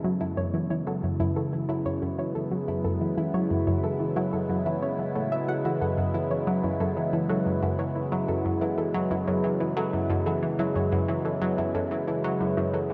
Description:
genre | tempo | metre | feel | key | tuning
ambient, sequencer-driven space music | 91 BPM | 4/4 | straight | F# minor | A4 = 440 Hz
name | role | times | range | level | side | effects
sweeping resonant pad | sustained chords | 0.0-12.9 s | C#3 to E4 | -30 LUFS | equal | chorus, phaser
soft round pluck | arpeggios | 0.0-12.8 s | E4 to F#5 | -36 LUFS | equal | chorus, tape echo
analog pluck | riff | 0.0-12.9 s | F#2 to C#4 | -31 LUFS | equal | chorus, phaser, cassette tape, tape echo
room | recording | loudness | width
wet spring reverb, RT60 2.5 s | echo-heavy mix | -27 LUFS | mono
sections
0.0-12.9 A section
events
filter sweep on synth arpeggio sound 0.0-12.9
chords
0.0 F#m7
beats
| 0.54 1.20 1.86 2.52 | 3.17 3.83 4.49 5.15 | 5.81 6.47 7.13 7.79 | 8.45 9.11 9.77 10.43 | 11.09 11.75 12.40

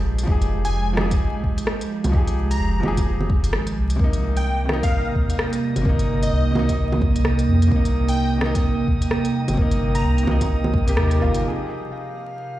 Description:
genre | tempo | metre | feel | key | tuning
future garage | 129 BPM | 4/4 | swing 60% on 16ths | F minor | A4 = 441 Hz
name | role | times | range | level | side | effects
felt-muted upright piano | accompaniment | 0.0-12.6 s | C3 to Ab4 | -28 LUFS | left 2 dB | sidechain pumping, tape echo
warbly tape-like pad | sustained chords | 0.0-12.6 s | C3 to G5 | -25 LUFS | right 3 dB | chorus, built-in reverb, sidechain pumping
warm sub bass | bass | 0.0-11.4 s | F1 to F2 | -21 LUFS | equal | sidechain pumping
organic electronic drum kit | drums | 0.2-11.4 s | bongos, hi-hat, rim click | -27 LUFS | right 1 dB | low-pass filter on snare, small room ambience, low-pass filter on hats, low-pass filter on perc
electronic kick drum | drums | 0.3-10.8 s | none | -21 LUFS | equal | small room ambience
plucky unison lead | melody | 0.6-10.3 s | Eb5 to Bb5 | -31 LUFS | left 1 dB | tape echo
drifting glass-harmonics texture | texture | 4.3-12.6 s | Eb5 to F5 | -36 LUFS | right 2 dB | chorus, built-in reverb
room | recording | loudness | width
light reverb, digital ambience | played on a big sound system in a bare room, large studio reverb, vinyl crackle | -18 LUFS | side -14 dB against mid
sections
0.0-11.4 A section; 11.4-12.6 B section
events
kick drops out 11.0-11.4; band accent 11.0; filter sweep on ambient pad 11.4-12.6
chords
0.0 Fm9; 4.0 Cm7; 11.4 Fm9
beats
| 0.27 0.74 1.20 1.67 | 2.13 2.60 3.06 3.53 | 4.00 4.46 4.92 5.39 | 5.86 6.32 6.79 7.25 | 7.72 8.18 8.65 9.11 | 9.58 10.04 10.51 10.97 | 11.44 11.90 12.37

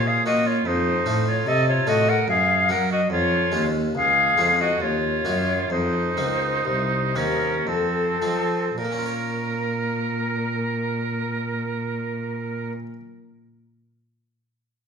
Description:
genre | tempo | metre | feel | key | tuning
classical, baroque-style sonata movement with continuo | 53-74 BPM | 3/4 | straight | Bb minor | A4 = 440 Hz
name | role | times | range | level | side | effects
silver concert flute | melody | 0.0-12.7 s | A4 to Gb5 | -24 LUFS | left 4 dB | none
bright oboe | second line | 0.0-12.7 s | C4 to Bb4 | -27 LUFS | right 6 dB | none
harpsichord | accompaniment | 0.0-13.0 s | C2 to Db5 | -27 LUFS | left 1 dB | none
rich cello | bass | 0.0-12.7 s | C2 to Bb3 | -27 LUFS | right 1 dB | none
room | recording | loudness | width
wet recital hall reverb, RT60 1.4 s | minimal, uncompressed stereo recording | -20 LUFS | side -6 dB against mid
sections
0.0-8.8 A section; 8.8-12.1 B section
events
slowing down 1.9-8.8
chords
0.0 Bbm; 0.7 F7; 2.3 Gb; 3.1 Db; 4.8 Ebm; 5.7 F7sus4; 7.7 F7; 8.8 Bbm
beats
| 0.66 1.47 2.29 | 3.12 3.96 4.82 | 5.72 6.66 7.68 | 8.79 9.91 11.03

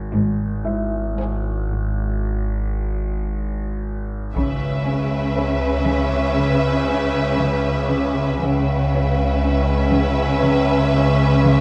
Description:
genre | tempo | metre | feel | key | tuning
cinematic, suspense film score | 59 BPM | 4/4 | straight | C# harmonic minor, C# minor from 4.3 s | A4 = 440 Hz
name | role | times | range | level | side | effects
overtone-sweeping drone | drone | 0.0-11.6 s | G#1 to C#2 | -27 LUFS | equal | chorus, built-in reverb
warm grand piano | texture | 0.0-11.6 s | E4 to E5 | -37 LUFS | equal | none
warm studio cello section | riff | 0.1-11.6 s | G#2 to C#4 | -28 LUFS | equal | none
rich studio cello section | bass | 0.1-11.6 s | G#2 to C#3 | -26 LUFS | equal | none
rich studio double bass section | bass | 0.1-11.6 s | G#1 to C#2 | -25 LUFS | equal | none
rich studio violin section | second line | 1.2-11.6 s | G#4 to B#4 | -28 LUFS | equal | none
rich studio violin section | melody | 4.4-11.6 s | E5 | -29 LUFS | equal | none
dark studio viola section | accompaniment | 4.4-11.6 s | C#4 | -28 LUFS | equal | none
taiko ensemble | drums | 4.4-6.4 s | none | -29 LUFS | equal | none
room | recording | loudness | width
wet scoring stage reverb, RT60 1.9 s | dark, warm production | -20 LUFS | mono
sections
0.0-4.3 A section; 4.3-11.6 B section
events
break 2.2-4.3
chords
0.0 N.C.; 4.3 C#m7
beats
| 0.13 1.19 2.25 3.30 | 4.35 5.37 6.39 7.41 | 8.42 9.43 10.44 11.45

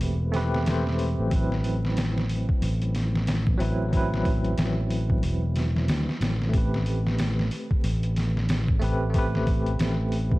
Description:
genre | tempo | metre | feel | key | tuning
trip hop | 92 BPM | 4/4 | swing 60% on 16ths | A dorian | A4 = 440 Hz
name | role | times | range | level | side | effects
bell-like tine electric piano | accompaniment | 0.0-10.4 s | F#3 to C5 | -30 LUFS | equal | medium stereo tremolo, low-pass filter, tape echo
overdriven fingered electric bass | bass | 0.0-10.4 s | E1 to D2 | -25 LUFS | equal | none
trip hop sampler-style drum kit | drums | 0.0-10.4 s | hi-hat, kick drum, snare drum | -27 LUFS | equal | overdrive, studio reverb
room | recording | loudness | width
digital ambience | dark, warm production, vinyl crackle | -22 LUFS | side -19 dB against mid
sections
0.0-10.4 A section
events
filter sweep on tine electric piano 0.0-10.4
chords
0.0 Am9; 1.3 D13/A (rootless); 6.5 Am9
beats
0.01 0.67 | 1.32 1.97 2.62 3.27 | 3.93 4.58 5.23 5.88 | 6.54 7.19 7.84 8.49 | 9.14 9.80

